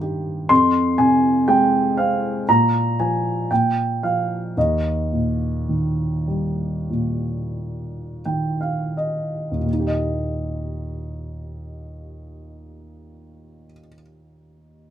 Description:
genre	classical, lyrical solo piano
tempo	42-62 BPM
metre	4/4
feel	rubato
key	Eb major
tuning	A4 = 440 Hz
part	dark baby grand piano	solo	0.0-14.9 s	Eb2 to C6	-19 LUFS	equal	none
room	light reverb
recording	minimal, uncompressed stereo recording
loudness	-18 LUFS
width	side -10 dB against mid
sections	0.0-9.7 A section; 9.7-14.9 B section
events	slowing down 0.5-9.7; grand piano fill 7.5-9.7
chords	0.0 Cm/G; 0.5 Fm; 2.5 Bb5; 4.6 Eb

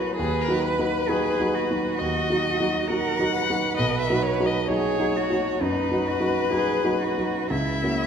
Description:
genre	classical, slow romantic movement for piano trio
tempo	66 BPM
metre	4/4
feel	rubato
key	unclear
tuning	A4 = 441 Hz
part	warm violin	melody	0.0-8.1 s	G#4 to F#5	-26 LUFS	left 6 dB	none
part	rich cello	second line	0.0-8.1 s	D#4 to B4	-28 LUFS	right 6 dB	none
part	warm grand piano	accompaniment	0.0-8.1 s	B1 to A#4	-25 LUFS	right 1 dB	none
room	wet concert hall reverb, RT60 1.8 s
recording	none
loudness	-21 LUFS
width	side -7 dB against mid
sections	0.0-8.1 A section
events	none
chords	0.2 B/D#; 3.8 B; 7.5 F#7/C#

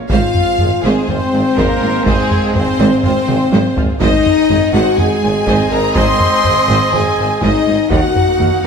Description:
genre	cinematic, epic orchestral film score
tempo	123 BPM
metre	4/4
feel	straight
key	unclear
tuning	A4 = 441 Hz
part	clear trombone section	sustained chords	0.0-8.7 s	F2 to C4	-26 LUFS	right 2 dB	none
part	rich symphonic string section	sustained chords	0.0-8.7 s	Ab3 to Ab5	-26 LUFS	right 1 dB	none
part	warm trumpet	stabs	0.0-8.7 s	C5 to Gb5	-23 LUFS	right 2 dB	none
part	bright symphonic violin section	melody	0.1-8.6 s	Ab4 to C6	-24 LUFS	left 3 dB	none
part	mellow large flute ensemble	second line	0.1-8.7 s	Ab4 to C6	-23 LUFS	equal	none
part	warm symphonic violin section	second line	0.1-8.6 s	Ab4 to C6	-24 LUFS	left 2 dB	none
part	rich symphonic viola section	accompaniment	0.1-8.7 s	Eb4 to Gb5	-26 LUFS	right 1 dB	none
part	mellow French horn section	sustained chords	0.1-8.7 s	Ab3 to C5	-16 LUFS	left 4 dB	none
part	clear symphonic double bass section	bass	0.1-8.7 s	Ab1 to Eb2	-21 LUFS	right 4 dB	none
part	rich symphonic cello section	bass	0.1-8.7 s	Eb2 to Ab2	-21 LUFS	right 2 dB	none
part	warm tuba	bass	0.1-8.7 s	Ab1 to Eb2	-23 LUFS	right 4 dB	none
part	taiko ensemble	drums	0.1-8.6 s	none	-18 LUFS	equal	none
room	wet scoring stage reverb, RT60 1.5 s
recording	none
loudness	-11 LUFS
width	side -6 dB against mid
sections	0.0-8.7 A section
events	drum fill 3.3-4.0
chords	0.1 Fm/Ab; 4.0 Ab; 7.9 Ebmadd9

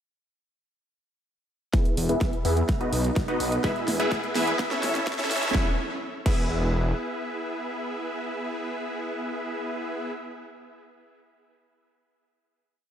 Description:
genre	EDM, festival progressive house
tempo	126 BPM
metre	4/4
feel	straight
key	E major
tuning	A4 = 439 Hz
part	supersaw stab	riff	1.7-10.1 s	B3 to E5	-27 LUFS	equal	sidechain pumping, low-pass filter, tape echo
part	big-room dance drum kit	drums	1.7-6.4 s	crash cymbal, hi-hat, snare drum	-32 LUFS	right 1 dB	overdrive
part	electronic kick drum	drums	1.7-6.4 s	none	-25 LUFS	equal	overdrive
part	detuned saw bass	bass	2.0-6.9 s	E1 to E2	-27 LUFS	equal	sidechain pumping
room	wet lush hall reverb, RT60 2.1 s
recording	dreamy mix soaked in reverb, high-pass filter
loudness	-24 LUFS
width	side -9 dB against mid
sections	1.7-5.5 build; 5.5-9.4 final chord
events	build-up 1.7-5.5; drum fill 1.7-5.5; filter sweep on supersaw synth 1.7-5.5; filter sweep 1.7-5.5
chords	1.7 E; 2.7 B; 3.6 E; 4.6 A; 5.5 E

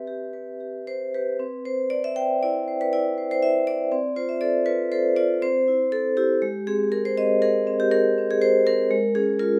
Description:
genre	classical, contemporary piece for solo vibraphone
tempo	120 BPM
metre	5/4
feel	rubato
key	unclear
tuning	A4 = 438 Hz
part	vibraphone with medium hard mallets	solo	0.0-9.6 s	Ab3 to G5	-23 LUFS	equal	none
room	light reverb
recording	none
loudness	-23 LUFS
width	mono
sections	0.0-1.4 A section; 1.4-9.6 A section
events	none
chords	0.0 Cmaj7; 1.4 C; 3.9 Dm13/C; 5.4 C; 6.4 Ab; 8.9 Bbm7/Ab

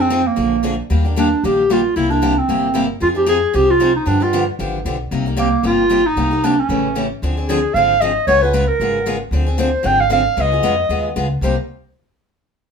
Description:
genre	acoustic string swing (jazz manouche)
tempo	228 BPM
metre	4/4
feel	swing 56% on 8ths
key	C minor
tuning	A4 = 440 Hz
part	warm clarinet	melody	0.0-11.6 s	Bb3 to G5	-16 LUFS	right 1 dB	none
part	picked steel-string acoustic guitar	accompaniment	0.0-11.5 s	C3 to Ab4	-21 LUFS	left 2 dB	none
part	upright bass	bass	0.0-11.6 s	G1 to G2	-22 LUFS	left 1 dB	none
room	moderate studio reverb, RT60 0.6 s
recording	band playing live in one room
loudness	-14 LUFS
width	side -6 dB against mid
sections	0.0-7.2 A section; 7.2-11.4 B section; 11.4-12.5 C section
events	none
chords	0.4 Bb7; 0.9 Ebmaj7; 2.0 C7; 3.0 Fm7; 4.1 G7; 5.1 Cm7; 6.7 A7; 7.2 Dm7b5; 8.3 Db7; 9.3 Dm7b5; 10.4 Db9; 11.4 Cm7

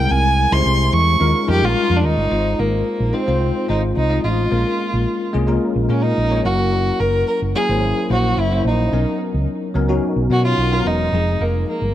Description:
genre	polished 1980s jazz-funk pop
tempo	109 BPM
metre	4/4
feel	straight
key	Ab major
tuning	A4 = 440 Hz
part	warm violin	melody	0.0-11.9 s	Bb3 to Db6	-20 LUFS	right 1 dB	none
part	bell-like tine electric piano	accompaniment	0.0-11.9 s	F3 to Eb5	-21 LUFS	left 2 dB	fast stereo tremolo, ensemble chorus
part	hollow-body short-scale fingered electric bass	bass	0.0-11.9 s	Fb1 to B2	-19 LUFS	right 1 dB	none
room	light reverb, small room ambience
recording	none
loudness	-16 LUFS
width	side -12 dB against mid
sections	0.0-2.3 A section; 2.3-11.9 B section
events	none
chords	0.0 C7b13; 1.2 Eb9sus4; 2.3 Ab6; 4.5 Bbm7; 6.4 Gb7; 8.9 Bmaj9; 11.1 Fm7

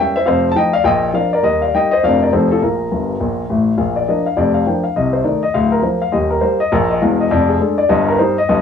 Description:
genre	jazz, stride piano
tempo	204 BPM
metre	4/4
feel	swing 61% on 8ths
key	Bb major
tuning	A4 = 440 Hz
part	warm baby grand piano	solo	0.0-8.6 s	D1 to A5	-13 LUFS	left 2 dB	cassette tape
room	moderate booth ambience, RT60 0.2 s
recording	home recording on cassette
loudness	-13 LUFS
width	side -7 dB against mid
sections	0.0-3.8 A section; 3.8-8.6 B section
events	grand piano fill 2.9-3.8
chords	0.3 F7; 0.9 Bb; 1.4 Eb; 2.0 Bb/F; 2.3 F7; 2.6 Bb5; 3.8 Bb; 5.0 Adim/C; 5.6 Bb/D; 6.1 Eb; 7.3 Ddim/F; 7.9 Eb/G

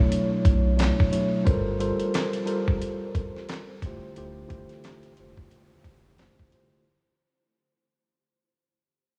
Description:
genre	hip hop, boom-bap hip-hop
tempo	89 BPM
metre	4/4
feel	swing 59% on 16ths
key	unclear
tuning	A4 = 441 Hz
part	mellow tine electric piano	accompaniment	0.0-6.8 s	B2 to C#5	-30 LUFS	equal	high-pass filter, low-pass filter
part	sub bass with octave	bass	0.0-6.3 s	D1 to B1	-28 LUFS	equal	none
part	dusty soul sampler-style drum kit	drums	0.1-6.7 s	handclaps, hi-hat, kick drum, snare drum	-26 LUFS	equal	none
room	moderate huge ambient reverb, RT60 7.6 s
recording	dreamy mix soaked in reverb, vinyl crackle, small room ambience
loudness	-25 LUFS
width	mono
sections	0.0-6.9 A section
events	fade-out 0.0-6.9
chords	0.0 Bm11; 1.5 Gm11; 3.8 Dm11

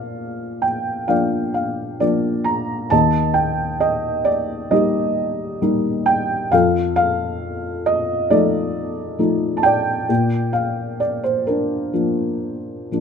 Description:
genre	classical, lyrical solo piano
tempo	66 BPM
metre	4/4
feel	rubato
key	Bb major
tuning	A4 = 440 Hz
part	felt-muted upright piano	solo	0.0-13.0 s	Eb2 to Bb5	-18 LUFS	equal	none
room	light reverb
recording	close, detailed microphones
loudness	-17 LUFS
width	side -6 dB against mid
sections	0.0-13.0 A section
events	none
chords	0.0 Bb; 2.9 Eb; 6.5 F7; 10.1 Bb

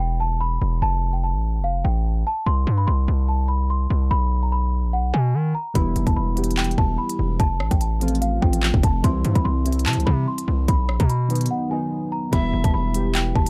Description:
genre	hip hop, drill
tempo	146 BPM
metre	4/4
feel	half-time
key	E phrygian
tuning	A4 = 441 Hz
part	small celesta	melody	0.0-13.5 s	F5 to C6	-30 LUFS	equal	low-pass filter, delay
part	distorted 808-style bass	bass	0.0-13.5 s	E1 to D#3	-23 LUFS	equal	distortion
part	warbly lo-fi synth keys	accompaniment	5.7-13.5 s	D#3 to G4	-28 LUFS	equal	chorus, low-pass filter
part	drill drum kit	drums	5.8-13.5 s	handclaps, hi-hat, kick drum, rim click	-24 LUFS	equal	none
part	breathy bright pan flute	second line	12.3-12.7 s	E5	-37 LUFS	equal	delay
room	little or no reverb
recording	dark, warm production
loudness	-21 LUFS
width	mono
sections	0.0-12.3 A section; 12.3-13.5 B section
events	break 0.0-5.8, 11.5-12.3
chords	0.0 E5; 0.8 F; 2.5 C5; 4.1 N.C.; 5.8 Em; 7.4 F; 9.0 C; 10.7 B; 12.3 Em

